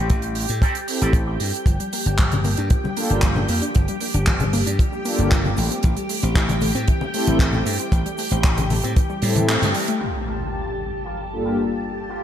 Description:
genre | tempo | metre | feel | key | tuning
nu-disco, nu disco | 115 BPM | 4/4 | straight | G dorian | A4 = 440 Hz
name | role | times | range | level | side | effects
string machine, full ensemble | sustained chords | 0.0-12.2 s | G4 to A5 | -29 LUFS | equal | ensemble chorus, sidechain pumping
electric guitar with an envelope filter | riff | 0.0-1.4, 10.0-12.2 s | C4 to Bb4 | -32 LUFS | right 1 dB | analog chorus, low-pass filter, digital delay
slap bass | bass | 0.0-9.7 s | G1 to A2 | -22 LUFS | equal | tube saturation
kick drum | drums | 0.1-9.1 s | none | -18 LUFS | equal | none
tight funk drum kit | drums | 0.1-10.1 s | crash cymbal, handclaps, hi-hat | -26 LUFS | right 2 dB | low-pass filter on hats, low-pass filter on cymbals, low-pass filter on snare, low-pass filter on room, gated reverb
warm analog pad | accompaniment | 0.9-11.6 s | G2 to A4 | -26 LUFS | equal | chorus, sidechain pumping, digital delay
wide unison pluck | arpeggios | 1.7-10.0 s | E3 to D4 | -28 LUFS | left 1 dB | sidechain pumping, ping-pong delay
egg shaker and congas | percussion | 1.7-10.0 s | none | -28 LUFS | left 3 dB | none
impact | sound effects | 10.0-12.1 s | none | -31 LUFS | equal | none
room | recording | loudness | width
light reverb, small room ambience | bright 1980s-style digital production | -18 LUFS | side -10 dB against mid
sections
0.0-10.0 A section; 10.0-12.2 B section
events
kick drops out 9.5-10.0; band accent 9.5; impact 10.0-12.1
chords
0.0 Am7; 1.7 Gm7; 5.6 Am7; 10.0 Gm7

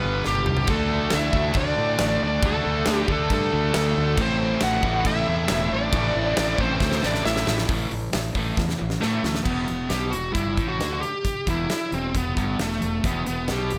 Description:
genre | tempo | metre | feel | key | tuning
hard rock | 136 BPM | 4/4 | straight | E minor | A4 = 443 Hz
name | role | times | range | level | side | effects
bluesy overdriven lead guitar | melody | 0.0-13.8 s | A3 to F#5 | -28 LUFS | equal | distortion, slapback echo
octave-fuzz lead guitar | second line | 0.0-7.6 s | G3 to F#4 | -34 LUFS | equal | none
overdriven electric guitar | riff | 0.0-13.8 s | E2 to D4 | -31 LUFS | equal | none
fuzz fingered electric bass | bass | 0.0-13.8 s | E1 to A2 | -30 LUFS | equal | overdrive
huge arena drum kit | drums | 0.2-13.8 s | crash cymbal, hi-hat, kick drum, snare drum, toms | -30 LUFS | equal | none
scooped high-gain guitar | riff | 0.7-7.7 s | A2 to F#4 | -32 LUFS | equal | none
room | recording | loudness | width
light reverb, studio ambience | none | -23 LUFS | mono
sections
0.0-7.7 A section; 7.7-9.5 B section; 9.5-13.8 C section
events
drum fill 0.3-0.7, 6.8-7.7, 8.6-9.5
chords
0.0 G; 0.7 D; 4.2 Am; 7.7 A5; 9.5 Em

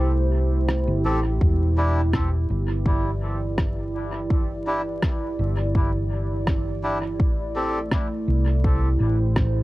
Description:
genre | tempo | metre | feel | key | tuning
ambient dub | 83 BPM | 4/4 | straight | A minor | A4 = 439 Hz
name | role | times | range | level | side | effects
warbly tape-like pad | sustained chords | 0.0-9.6 s | E3 to D5 | -28 LUFS | right 2 dB | chorus, built-in reverb, cassette tape
hollow-body short-scale fingered electric bass | bass | 0.0-9.6 s | E1 to C2 | -23 LUFS | equal | none
electronic rim click | drums | 0.7-9.5 s | none | -29 LUFS | equal | studio ambience, dub echo
melodica | stabs | 1.1-7.8 s | C4 to A4 | -29 LUFS | left 1 dB | cassette tape, dub echo, plate reverb
electronic kick drum | drums | 1.4-9.5 s | none | -22 LUFS | equal | studio ambience
room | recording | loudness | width
light reverb | home recording on cassette, vinyl crackle | -20 LUFS | side -18 dB against mid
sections
0.0-9.6 A section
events
break 0.0-1.4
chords
0.0 Am7; 1.4 Em7; 7.2 Am7

